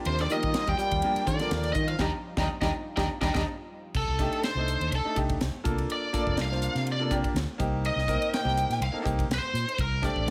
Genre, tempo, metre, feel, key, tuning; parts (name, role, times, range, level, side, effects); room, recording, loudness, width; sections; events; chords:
electric jazz fusion; 124 BPM; 4/4; swing 54% on 16ths; C dorian from 4.0 s; A4 = 440 Hz
bright baby grand piano; accompaniment; 0.0-10.3 s; A3 to C5; -35 LUFS; equal
lush unison pad; sustained chords; 0.0-3.9 s; F3 to F4; -44 LUFS; equal
biting lead guitar; melody; 0.1-10.3 s; A4 to Bb5; -32 LUFS; equal; overdrive
breathy trombone; second line; 0.1-3.4 s; C3 to G3; -38 LUFS; equal
fretless electric bass; bass; 0.1-10.3 s; F1 to Eb3; -32 LUFS; equal
crisp fusion drum kit; drums; 0.1-10.3 s; crash cymbal, hi-hat, kick drum, ride cymbal, snare drum; -35 LUFS; equal
light reverb; -28 LUFS; mono
0.0-4.0 A section; 4.0-10.3 B section
band accent 2.0-4.0; drum fill 3.5-4.0; lead electric guitar solo 4.0-10.3
0.0 Ebmaj9; 4.0 Cm69; 5.7 Gm9 (rootless); 7.6 Cm7; 9.8 Bbmaj13